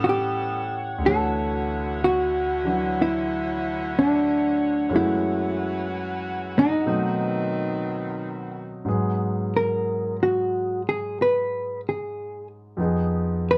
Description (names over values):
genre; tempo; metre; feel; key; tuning
jazz ballad; 61 BPM; 4/4; swing 66% on 8ths; G# minor from 8.9 s; A4 = 438 Hz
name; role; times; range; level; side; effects
hollow-body jazz guitar; melody; 0.0-13.6 s; D4 to B4; -25 LUFS; equal; none
warm concert grand piano; accompaniment; 0.0-13.6 s; D2 to F#5; -29 LUFS; equal; none
mellow saxophone section; sustained chords; 0.0-8.8 s; D3 to F#5; -34 LUFS; equal; none
room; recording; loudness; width
moderate small room reverb, RT60 0.5 s; none; -24 LUFS; mono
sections
0.0-8.9 A section; 8.9-13.6 B section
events
hollow-body jazz guitar solo 8.9-13.6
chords
0.0 A13; 1.0 Dmaj9; 4.9 F#m7; 6.9 B7b9; 8.9 G#m7; 12.8 Fm7b5